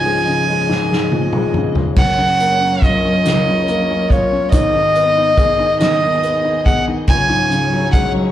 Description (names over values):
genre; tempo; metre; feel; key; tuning
six-eight pop ballad; 47 BPM (dotted quarters); 6/8; straight; F# major; A4 = 441 Hz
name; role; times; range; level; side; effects
warm violin; melody; 0.0-8.1 s; C#5 to G#5; -16 LUFS; right 1 dB; slapback echo
clear baby grand piano; accompaniment; 0.0-8.3 s; F#1 to G#4; -20 LUFS; left 2 dB; slapback echo
dark studio string section; sustained chords; 0.0-8.3 s; D#3 to D#5; -22 LUFS; equal; none
unplugged drum kit; drums; 0.7-8.1 s; crash cymbal, hi-hat, kick drum, snare drum, toms; -17 LUFS; equal; none
room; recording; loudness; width
moderate club reverb, RT60 0.7 s; live gig heard through the venue's PA, club ambience; -13 LUFS; side -12 dB against mid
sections
0.0-2.0 A section; 2.0-8.3 B section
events
break 0.0-2.0; drum fill 0.7-2.0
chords
0.0 C#add9; 2.0 F#maj7; 4.5 G#m; 7.1 C#sus4